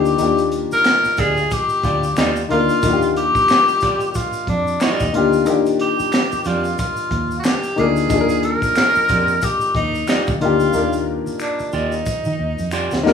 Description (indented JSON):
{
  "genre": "R&B, neo-soul",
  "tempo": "91 BPM",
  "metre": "4/4",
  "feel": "swing 60% on 16ths",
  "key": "Eb major",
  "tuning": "A4 = 441 Hz",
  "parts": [
    { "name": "bright tenor saxophone", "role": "melody", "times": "0.0-13.1 s", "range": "D4 to Bb4", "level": "-19 LUFS", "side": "left 1 dB", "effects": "slapback echo, plate reverb" },
    { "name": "warm upright piano", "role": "accompaniment", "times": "0.0-13.1 s", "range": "Eb3 to Bb4", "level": "-20 LUFS", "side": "left 6 dB", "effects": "plate reverb" },
    { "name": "vintage muted fingered electric bass", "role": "bass", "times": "0.0-13.1 s", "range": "D2 to Eb3", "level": "-24 LUFS", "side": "right 1 dB", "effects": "none" },
    { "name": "tube shaker and finger snaps", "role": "percussion", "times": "0.1-13.0 s", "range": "none", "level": "-32 LUFS", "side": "left 2 dB", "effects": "none" },
    { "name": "crunchy breakbeat drum kit", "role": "drums", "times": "0.2-13.1 s", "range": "finger snaps, hi-hat, kick drum, snare drum", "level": "-23 LUFS", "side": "right 1 dB", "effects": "none" },
    { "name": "electric guitar at the edge of break-up", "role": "second line", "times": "1.2-13.0 s", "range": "F4 to D5", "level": "-25 LUFS", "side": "right 3 dB", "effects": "plate reverb" }
  ],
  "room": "moderate studio reverb, RT60 0.5 s",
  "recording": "rough home demo mix, studio reverb",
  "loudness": "-15 LUFS",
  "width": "side -7 dB against mid",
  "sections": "0.0-13.1 A section",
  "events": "drum fill 10.7-13.1",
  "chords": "0.0 Ebmaj9",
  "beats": "| 0.19 0.85 1.51 2.17 | 2.83 3.49 4.14 4.80 | 5.46 6.12 6.78 7.44 | 8.10 8.76 9.42 10.08 | 10.74 11.40 12.06 12.72"
}